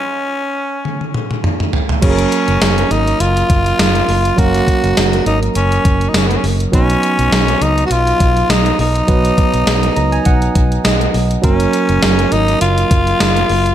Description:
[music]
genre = 1980s-style pop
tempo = 102 BPM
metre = 4/4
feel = swing 55% on 16ths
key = F# major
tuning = A4 = 438 Hz
[part]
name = growling tenor saxophone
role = melody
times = 0.0-13.7 s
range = B3 to F#4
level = -17 LUFS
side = left 1 dB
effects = none
[part]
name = gated 80s digital drum machine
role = drums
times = 0.9-13.7 s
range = crash cymbal, hi-hat, kick drum, snare drum, tambourine, toms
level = -16 LUFS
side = equal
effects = gated reverb, gated reverb snare
[part]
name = barky tine electric piano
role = accompaniment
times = 2.0-13.7 s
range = F#3 to A#5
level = -18 LUFS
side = right 4 dB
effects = none
[part]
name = vintage muted fingered electric bass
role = bass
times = 2.0-13.7 s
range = F#1 to C#2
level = -17 LUFS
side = equal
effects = none
[sound]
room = light reverb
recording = none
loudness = -11 LUFS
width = side -11 dB against mid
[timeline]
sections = 0.0-2.0 A section; 2.0-13.7 B section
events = stop 0.0-2.0; drum fill 0.8-2.0; tine electric piano fill 9.7-11.4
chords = 0.0 N.C.; 2.0 F#; 6.7 B; 11.4 F#

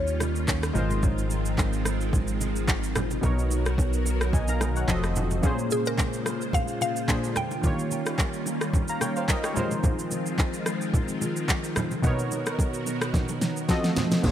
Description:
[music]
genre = amapiano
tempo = 109 BPM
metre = 4/4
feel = swing 55% on 16ths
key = unclear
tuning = A4 = 440 Hz
[part]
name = mallet-like synth pluck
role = melody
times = 0.0-0.7, 5.7-8.2 s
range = Ab4 to G5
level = -32 LUFS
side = left 1 dB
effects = chorus, phaser, tape echo
[part]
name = warm analog keys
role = accompaniment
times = 0.0-14.3 s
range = Bb2 to A#5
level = -30 LUFS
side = left 1 dB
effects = chorus
[part]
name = string machine, violas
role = sustained chords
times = 0.0-14.3 s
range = C3 to C5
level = -31 LUFS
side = right 1 dB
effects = phaser, ensemble chorus, sidechain pumping
[part]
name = plucky analog bass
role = bass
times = 0.0-5.4 s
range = F1 to Eb2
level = -28 LUFS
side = equal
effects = none
[part]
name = downlifter and impact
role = sound effects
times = 0.0-1.0, 14.2-14.3 s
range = none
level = barely audible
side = none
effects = none
[part]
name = smooth R&B drum kit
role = drums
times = 0.1-14.3 s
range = crash cymbal, handclaps, kick drum, rim click, shaker, snare drum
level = -27 LUFS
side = equal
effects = overdrive
[part]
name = bongos and congas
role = percussion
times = 0.2-14.3 s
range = none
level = -33 LUFS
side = right 2 dB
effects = none
[part]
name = tight log drum bass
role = bass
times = 14.2-14.3 s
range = Bb1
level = -22 LUFS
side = equal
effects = none
[sound]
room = light reverb, digital ambience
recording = none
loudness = -24 LUFS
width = side -10 dB against mid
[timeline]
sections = 0.0-14.2 A section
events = drum fill 13.1-14.2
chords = 0.0 Eb9; 0.8 Ab6; 3.2 Bmaj7; 4.9 F7b9; 5.4 Bbm9; 7.1 Bb9; 7.6 Eb9; 9.6 Ab6; 12.0 Bmaj7; 13.7 F7b9

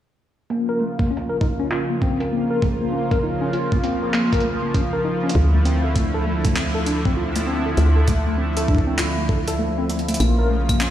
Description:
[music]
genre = IDM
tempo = 99 BPM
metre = 4/4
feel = swing 62% on 16ths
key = unclear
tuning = A4 = 441 Hz
[part]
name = warm analog pad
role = sustained chords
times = 0.5-10.9 s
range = Db3 to F4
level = -24 LUFS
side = right 1 dB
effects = chorus, sidechain pumping
[part]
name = mellow tine electric piano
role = arpeggios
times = 0.5-10.9 s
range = A3 to Bb4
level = -24 LUFS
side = left 2 dB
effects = medium stereo tremolo, low-pass filter, ping-pong delay
[part]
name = jungle sampler-style drum kit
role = drums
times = 0.5-10.9 s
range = claves, handclaps, hi-hat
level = -28 LUFS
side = equal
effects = low-pass filter on hats, low-pass filter on snare, low-pass filter on perc, low-pass filter on room
[part]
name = electronic kick drum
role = drums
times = 1.0-10.8 s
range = none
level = -20 LUFS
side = equal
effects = none
[part]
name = woody FM bass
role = bass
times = 5.4-10.9 s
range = Bb1 to D2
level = -21 LUFS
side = equal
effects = none
[sound]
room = moderate lush hall reverb, RT60 2.8 s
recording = played on a big sound system in a bare room, large studio reverb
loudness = -18 LUFS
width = side -11 dB against mid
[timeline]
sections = 0.5-10.2 A section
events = filter sweep on drum 0.5-10.2; filter sweep on tine electric piano 0.5-10.2; kick drops out 9.6-10.2; drum fill 9.9-10.2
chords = 0.5 Bbm; 5.3 Dmadd9; 10.2 Bbm

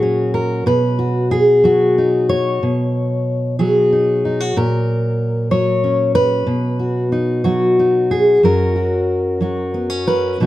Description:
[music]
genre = folk, solo fingerstyle acoustic guitar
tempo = 62 BPM (dotted quarters)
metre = 6/8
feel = rubato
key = F# major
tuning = A4 = 437 Hz
[part]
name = fingerpicked steel-string acoustic guitar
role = solo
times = 0.0-10.5 s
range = F#2 to C#5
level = -14 LUFS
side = equal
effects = none
[sound]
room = little or no reverb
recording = close, detailed microphones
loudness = -14 LUFS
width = side -15 dB against mid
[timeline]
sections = 0.0-10.4 A section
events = none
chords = 0.0 F#add9/A#; 0.7 B; 4.6 F#/A#; 6.5 B; 8.4 F#

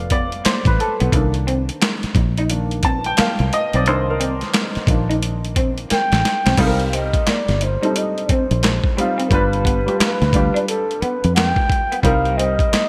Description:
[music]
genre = R&B, neo-soul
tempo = 88 BPM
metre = 4/4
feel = swing 63% on 16ths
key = C dorian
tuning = A4 = 441 Hz
[part]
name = warm baby grand piano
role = accompaniment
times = 0.0-12.9 s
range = Eb3 to A5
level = -25 LUFS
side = equal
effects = analog chorus
[part]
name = fingered electric bass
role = bass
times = 0.0-12.8 s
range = F1 to F2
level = -22 LUFS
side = equal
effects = none
[part]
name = electric guitar through a small old amp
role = second line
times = 0.1-12.9 s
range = Bb3 to Eb4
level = -29 LUFS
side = equal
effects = lush chorus
[part]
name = boom bap sampler-style drum kit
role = drums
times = 0.1-12.9 s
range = crash cymbal, handclaps, hi-hat, kick drum, snare drum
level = -22 LUFS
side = equal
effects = gated reverb
[part]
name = breathy flugelhorn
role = melody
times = 5.9-12.9 s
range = A4 to G5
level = -24 LUFS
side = equal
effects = none
[sound]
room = light reverb, digital ambience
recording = bright 1980s-style digital production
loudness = -18 LUFS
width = mono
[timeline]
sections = 0.0-6.6 A section; 6.6-12.9 B section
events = grand piano solo 0.0-6.6; drum fill 5.9-6.6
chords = 0.0 G7 (rootless); 1.1 Cm7; 9.3 G7; 12.0 Cm7

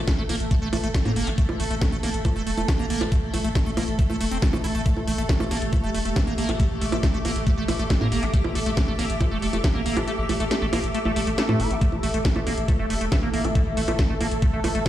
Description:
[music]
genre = psychedelic trance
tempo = 138 BPM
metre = 4/4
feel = straight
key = unclear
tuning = A4 = 440 Hz
[part]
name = swarming drone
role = sustained chords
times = 0.0-14.9 s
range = A3 to A4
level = -31 LUFS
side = equal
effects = built-in reverb, sidechain pumping
[part]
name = round analog bass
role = bass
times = 0.0-14.8 s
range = E1 to A2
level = -28 LUFS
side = equal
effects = none
[part]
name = granular cloud pad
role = texture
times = 0.0-14.9 s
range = A4 to D6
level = -32 LUFS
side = equal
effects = built-in reverb, sidechain pumping
[part]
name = liquid acid bass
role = riff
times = 0.1-14.9 s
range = A3 to E4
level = -29 LUFS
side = right 1 dB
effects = chorus, auto-pan, sidechain pumping, ping-pong delay
[part]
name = electronic kick drum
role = drums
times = 0.1-14.9 s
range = none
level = -22 LUFS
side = equal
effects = none
[part]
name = techno drum kit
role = drums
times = 0.1-14.9 s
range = bongos, hi-hat, snare drum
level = -29 LUFS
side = right 1 dB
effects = none
[part]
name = vowel-sweep wobble bass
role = second line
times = 12.7-14.2 s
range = E3 to C4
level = -41 LUFS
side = right 4 dB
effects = none
[sound]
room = light reverb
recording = played on a big sound system in a bare room, stone room reverb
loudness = -21 LUFS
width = side -12 dB against mid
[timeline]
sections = 0.0-14.9 A section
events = kick drops out 10.1-11.8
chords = 0.0 A5

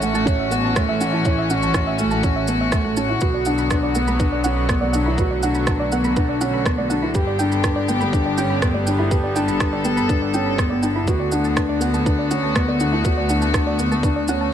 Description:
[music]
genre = piano and strings electronica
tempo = 122 BPM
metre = 4/4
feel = straight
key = D major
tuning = A4 = 439 Hz
[part]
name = rich chamber string section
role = sustained chords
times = 0.0-14.5 s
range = D3 to A4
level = -24 LUFS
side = left 2 dB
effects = sidechain pumping
[part]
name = soft round pluck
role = arpeggios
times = 0.0-14.5 s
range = B4 to F#6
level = -28 LUFS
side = right 4 dB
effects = chorus, vintage 12-bit sampler grit, sidechain pumping, tape echo
[part]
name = felt-muted upright piano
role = riff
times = 0.0-14.5 s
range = A3 to G4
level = -22 LUFS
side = equal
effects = tape echo
[part]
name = rich studio double bass section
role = bass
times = 0.0-14.5 s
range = G1 to D2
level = -25 LUFS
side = equal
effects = sidechain pumping
[part]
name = electronic shaker and rim click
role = drums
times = 0.0-14.4 s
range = none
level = -28 LUFS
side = right 2 dB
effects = none
[part]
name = electronic kick drum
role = drums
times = 0.3-14.1 s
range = none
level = -21 LUFS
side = equal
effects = none
[sound]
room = light reverb, small room ambience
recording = none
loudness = -17 LUFS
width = side -9 dB against mid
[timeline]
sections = 0.0-14.5 A section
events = none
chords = 0.0 A6; 3.2 Bm; 7.2 G; 11.1 D6

